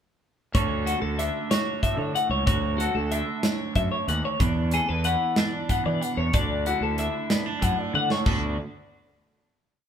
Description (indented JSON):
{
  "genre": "math rock and midwest emo",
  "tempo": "62 BPM (dotted quarters)",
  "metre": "6/8",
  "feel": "straight",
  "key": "D major",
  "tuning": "A4 = 440 Hz",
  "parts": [
    { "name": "twelve-string electric guitar", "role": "arpeggios", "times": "0.5-8.6 s", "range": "F#4 to F#5", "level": "-27 LUFS", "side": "left 3 dB", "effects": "none" },
    { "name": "fuzz fingered electric bass", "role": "bass", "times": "0.5-8.6 s", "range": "C#2 to E3", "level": "-28 LUFS", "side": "equal", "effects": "overdrive" },
    { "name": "modern studio drum kit", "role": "drums", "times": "0.5-8.4 s", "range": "hi-hat, kick drum, snare drum, splash cymbal, toms", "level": "-26 LUFS", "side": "right 1 dB", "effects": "none" },
    { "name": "twelve-string electric guitar", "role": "accompaniment", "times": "0.6-8.6 s", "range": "D2 to A4", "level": "-30 LUFS", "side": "right 4 dB", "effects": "none" }
  ],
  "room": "moderate stone room reverb, RT60 1.4 s",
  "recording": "band playing live in one room",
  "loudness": "-23 LUFS",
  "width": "side -8 dB against mid",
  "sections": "0.5-8.3 A section; 8.3-9.9 final chord",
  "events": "drum fill 7.9-8.3",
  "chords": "0.5 Dmaj9; 4.4 E7sus2; 6.3 D; 8.3 D6",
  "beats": "| 0.55 1.51 | 2.47 3.43 | 4.40 5.36 | 6.33 7.29 | 8.26"
}